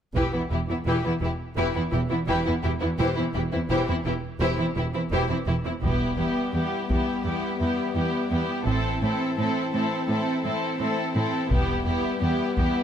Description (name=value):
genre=cinematic, epic orchestral film score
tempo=85 BPM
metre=4/4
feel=straight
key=E minor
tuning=A4 = 440 Hz
part: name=clear symphonic double bass section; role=bass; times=0.1-11.8 s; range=E1 to A1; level=-29 LUFS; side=right 2 dB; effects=none
part: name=warm symphonic violin section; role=second line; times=0.2-12.8 s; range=B3 to C5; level=-31 LUFS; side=left 2 dB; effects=none
part: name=rich symphonic viola section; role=accompaniment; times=0.2-12.8 s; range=E3 to E4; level=-29 LUFS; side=right 1 dB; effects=none
part: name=clear studio cello section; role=bass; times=0.2-12.7 s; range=E2 to A2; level=-29 LUFS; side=right 1 dB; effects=none
part: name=taiko ensemble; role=drums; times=0.2-1.5, 5.8-7.2, 11.5-12.8 s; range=none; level=-28 LUFS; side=left 1 dB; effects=none
part: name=clear studio violin section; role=melody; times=5.8-12.8 s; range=G4 to A4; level=-31 LUFS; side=left 2 dB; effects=none
part: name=dark French horn section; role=sustained chords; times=5.8-12.8 s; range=E3 to C4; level=-30 LUFS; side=left 3 dB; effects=none
room=light reverb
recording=close, detailed microphones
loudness=-23 LUFS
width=side -9 dB against mid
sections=0.2-5.8 A section; 5.8-12.8 B section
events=build-up 5.8-12.8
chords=0.2 Em; 8.7 Am; 11.5 Em